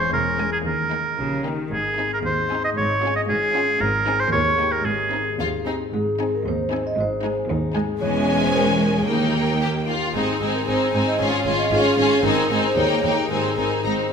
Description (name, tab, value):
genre	cinematic, playful, whimsical film cue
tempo	114 BPM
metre	2/4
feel	straight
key	Ab major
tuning	A4 = 441 Hz
part	rich studio violin section	melody	0.0-13.9 s	G5 to Bb5	-29 LUFS	left 3 dB	none
part	clear oboe	second line	0.0-5.4 s	Ab4 to Eb5	-21 LUFS	right 2 dB	none
part	clear studio violin section	second line	0.0-14.1 s	Db4 to G4	-27 LUFS	left 4 dB	none
part	rich studio viola section	accompaniment	0.0-14.1 s	Ab3 to Db4	-27 LUFS	right 2 dB	none
part	concert harp	arpeggios	0.0-14.1 s	Ab2 to Ab4	-27 LUFS	left 7 dB	none
part	rich studio cello section	bass	0.1-13.9 s	Eb2 to Eb3	-29 LUFS	right 2 dB	none
part	rich studio double bass section	bass	0.1-13.9 s	Fb1 to Eb2	-31 LUFS	right 4 dB	none
part	vibraphone with soft mallets	melody	5.4-14.1 s	G4 to Eb5	-25 LUFS	right 2 dB	none
room	wet recital hall reverb, RT60 1.6 s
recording	minimal, uncompressed stereo recording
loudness	-19 LUFS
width	side -6 dB against mid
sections	0.0-5.9 A section; 5.9-14.1 A section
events	none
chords	0.0 Dbm/Fb; 0.7 Eb; 1.7 Ab; 2.8 Db/Ab; 3.8 Ab; 4.3 Eb7; 4.9 Ab; 8.0 Dbm/Fb; 9.1 Eb; 10.1 Ab; 11.2 Db/Ab; 12.2 Ab; 12.8 Eb7; 13.3 Ab